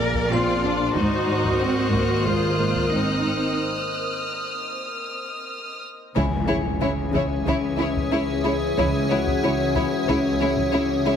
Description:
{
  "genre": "cinematic, suspense film score",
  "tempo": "92 BPM",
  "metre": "4/4",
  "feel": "straight",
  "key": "C# minor from 6.2 s",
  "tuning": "A4 = 440 Hz",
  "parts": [
    { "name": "warm studio violin section", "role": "melody", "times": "0.0-11.1 s", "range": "C5 to D5", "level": "-30 LUFS", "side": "left 2 dB", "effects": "none" },
    { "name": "warm studio viola section", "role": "accompaniment", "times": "0.0-11.1 s", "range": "Ab3 to Eb4", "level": "-29 LUFS", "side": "right 1 dB", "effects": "none" },
    { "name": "icy glass pad", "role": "sustained chords", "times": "0.0-11.2 s", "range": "G#4 to E5", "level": "-29 LUFS", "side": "left 1 dB", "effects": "chorus, built-in reverb" },
    { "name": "warm chamber cello section", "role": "riff", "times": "0.0-11.2 s", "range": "Ab2 to C#4", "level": "-28 LUFS", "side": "right 2 dB", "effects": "none" },
    { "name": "rich studio double bass section", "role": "bass", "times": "0.0-11.2 s", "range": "Ab1 to C#2", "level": "-30 LUFS", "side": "right 2 dB", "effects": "none" },
    { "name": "warm studio cello section", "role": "bass", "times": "0.0-11.2 s", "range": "C#2 to Bb4", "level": "-28 LUFS", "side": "right 1 dB", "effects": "none" },
    { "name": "vibraphone with hard mallets", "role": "texture", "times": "0.0-11.2 s", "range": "F#4 to C6", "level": "-34 LUFS", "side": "left 6 dB", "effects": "none" },
    { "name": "warm chamber violin section", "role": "texture", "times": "0.0-5.8 s", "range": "D6 to Gb6", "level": "-30 LUFS", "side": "equal", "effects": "none" },
    { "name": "taiko ensemble", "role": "drums", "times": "0.1-11.2 s", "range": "none", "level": "-31 LUFS", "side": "left 1 dB", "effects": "none" },
    { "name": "rich chamber violin section", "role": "second line", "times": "6.2-11.1 s", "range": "E4", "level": "-28 LUFS", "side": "left 1 dB", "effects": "none" },
    { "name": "mellow French horn section", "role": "sustained chords", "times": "6.2-11.2 s", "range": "E3 to C#4", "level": "-27 LUFS", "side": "left 6 dB", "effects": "none" },
    { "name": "timpani", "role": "percussion", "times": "6.2-7.1 s", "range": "C#3", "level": "-34 LUFS", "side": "left 2 dB", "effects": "none" },
    { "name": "impact", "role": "sound effects", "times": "6.2-8.8 s", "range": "none", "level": "-32 LUFS", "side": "equal", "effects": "none" }
  ],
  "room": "moderate recital hall reverb, RT60 1.6 s",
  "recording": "heavily compressed radio sound, multiband compression",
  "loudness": "-20 LUFS",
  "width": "side -8 dB against mid",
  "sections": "0.0-6.2 A section; 6.2-11.2 B section",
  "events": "break 3.6-6.2; drum fill 5.5-6.2; impact 6.2-8.8",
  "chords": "0.0 Bb; 0.9 Abadd9; 6.2 C#m"
}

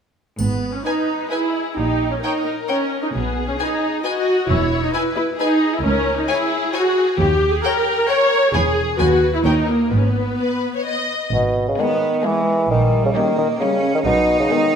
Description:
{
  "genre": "cinematic, playful, whimsical film cue",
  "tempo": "132 BPM",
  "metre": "3/4",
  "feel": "straight",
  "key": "G# minor",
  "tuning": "A4 = 440 Hz",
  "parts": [
    { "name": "warm studio viola section", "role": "accompaniment", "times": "0.4-14.8 s", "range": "G#3 to C#5", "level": "-19 LUFS", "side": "equal", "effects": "none" },
    { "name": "bright studio cello section", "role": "bass", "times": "0.4-14.8 s", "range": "C#2 to D#4", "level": "-24 LUFS", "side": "right 2 dB", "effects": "none" },
    { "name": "warm studio double bass section", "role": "bass", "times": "0.4-14.4 s", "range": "E1 to D#2", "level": "-22 LUFS", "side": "right 2 dB", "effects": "none" },
    { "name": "triangle", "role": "percussion", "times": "0.4-1.3 s", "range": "none", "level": "-37 LUFS", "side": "left 3 dB", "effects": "none" },
    { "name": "warm studio violin section", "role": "melody", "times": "0.9-14.8 s", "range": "G4 to D#5", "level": "-27 LUFS", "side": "left 5 dB", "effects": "none" },
    { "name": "rich studio violin section", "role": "second line", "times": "0.9-14.8 s", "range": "G4 to G#5", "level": "-26 LUFS", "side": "left 4 dB", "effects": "none" },
    { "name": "warm bassoon", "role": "accompaniment", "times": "11.3-14.8 s", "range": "B2 to E3", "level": "-17 LUFS", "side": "equal", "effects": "none" },
    { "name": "mellow French horn section", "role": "sustained chords", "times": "11.8-14.7 s", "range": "G3 to C#4", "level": "-27 LUFS", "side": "left 4 dB", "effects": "none" }
  ],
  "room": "wet scoring stage reverb, RT60 1.6 s",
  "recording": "none",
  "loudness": "-16 LUFS",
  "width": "side -7 dB against mid",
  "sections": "0.4-11.3 A section; 11.3-14.8 A section",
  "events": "none",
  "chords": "0.4 G#m; 1.8 D#7/A#; 3.1 G#m/B; 4.5 E; 5.8 C#m; 7.2 D#7; 8.5 E; 9.0 G#m/D# (rootless); 9.4 D#5; 9.9 G#m; 12.7 D#7/A#; 14.1 G#m/B"
}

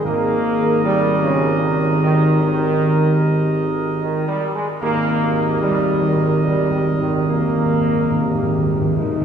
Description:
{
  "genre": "classical",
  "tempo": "74 BPM",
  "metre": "3/4",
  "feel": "uneven beats",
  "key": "unclear",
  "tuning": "A4 = 440 Hz",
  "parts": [
    { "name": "clear trumpet section", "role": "melody", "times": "0.0-9.2 s", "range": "Bb4 to Eb5", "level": "-27 LUFS", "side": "right 4 dB", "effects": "none" },
    { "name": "clear trombone section", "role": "sustained chords", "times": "0.0-9.2 s", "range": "Db3 to Bb3", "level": "-19 LUFS", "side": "right 1 dB", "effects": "none" },
    { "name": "mellow French horn section", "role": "sustained chords", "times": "0.0-9.2 s", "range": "Eb4 to Ab4", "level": "-24 LUFS", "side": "left 4 dB", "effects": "none" },
    { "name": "mellow tuba", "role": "bass", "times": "0.0-9.2 s", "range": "Ab1", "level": "-21 LUFS", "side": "right 2 dB", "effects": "none" },
    { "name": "timpani", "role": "percussion", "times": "0.0-1.2, 4.8-9.2 s", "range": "Ab2", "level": "-25 LUFS", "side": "equal", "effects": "none" }
  ],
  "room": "wet cathedral reverb, RT60 4.4 s",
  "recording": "studio reverb",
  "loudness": "-16 LUFS",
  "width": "side -8 dB against mid",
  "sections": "0.0-9.2 A section",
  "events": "timpani fill 4.8-9.2",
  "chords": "0.0 Eb/Ab"
}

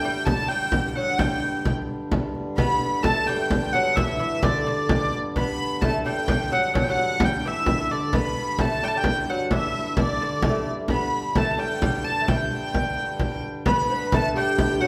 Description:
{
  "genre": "medieval dance",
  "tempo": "87 BPM (dotted quarters)",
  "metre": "6/8",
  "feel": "straight",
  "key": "G major",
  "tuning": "A4 = 438 Hz",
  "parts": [
    { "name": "clear hurdy-gurdy", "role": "melody", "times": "0.0-14.9 s", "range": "D5 to B5", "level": "-27 LUFS", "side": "equal", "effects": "none" },
    { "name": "lute", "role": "second line", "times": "0.0-14.9 s", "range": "D3 to B3", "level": "-32 LUFS", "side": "equal", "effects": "none" },
    { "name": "hand-pumped harmonium", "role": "drone", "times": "0.0-14.9 s", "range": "G2 to D3", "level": "-35 LUFS", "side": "equal", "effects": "none" },
    { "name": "frame drum", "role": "percussion", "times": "0.3-14.8 s", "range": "none", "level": "-28 LUFS", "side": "equal", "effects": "none" },
    { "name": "breathy bright bass recorder", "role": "second line", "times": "13.7-14.9 s", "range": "F#4 to C5", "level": "-31 LUFS", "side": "equal", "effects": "none" }
  ],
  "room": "wet stone room reverb, RT60 1.2 s",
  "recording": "band playing live in one room",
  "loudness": "-24 LUFS",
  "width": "mono",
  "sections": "0.0-2.6 A section; 2.6-13.7 B section; 13.7-14.9 B section",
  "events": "none",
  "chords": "none"
}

